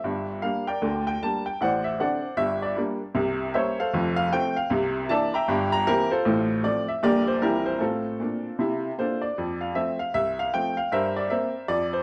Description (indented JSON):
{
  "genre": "jazz, stride piano",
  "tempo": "154 BPM",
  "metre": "4/4",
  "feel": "swing 62% on 8ths",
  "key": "F major",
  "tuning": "A4 = 441 Hz",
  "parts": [
    { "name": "clear upright piano", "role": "solo", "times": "0.0-12.0 s", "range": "F1 to Bb5", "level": "-26 LUFS", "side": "equal", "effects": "none" }
  ],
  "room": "moderate large studio reverb, RT60 1.2 s",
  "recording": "band playing live in one room",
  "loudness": "-26 LUFS",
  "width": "mono",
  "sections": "0.0-9.4 A section; 9.4-12.0 A section",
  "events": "none",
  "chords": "0.0 Gm; 1.6 D7/A; 2.4 Gm; 3.1 C5; 3.9 F; 4.7 C9; 5.5 C7/G; 6.3 F/A; 7.0 Gm/Bb; 7.4 C7/Bb; 7.8 F/A; 9.4 F; 10.9 C7/G",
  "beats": "| 0.04 0.43 0.81 1.20 | 1.59 1.98 2.37 2.76 | 3.15 3.53 3.92 4.31 | 4.70 5.09 5.48 5.86 | 6.25 6.64 7.03 7.42 | 7.80 8.19 8.58 8.97 | 9.36 9.74 10.13 10.52 | 10.91 11.29 11.68"
}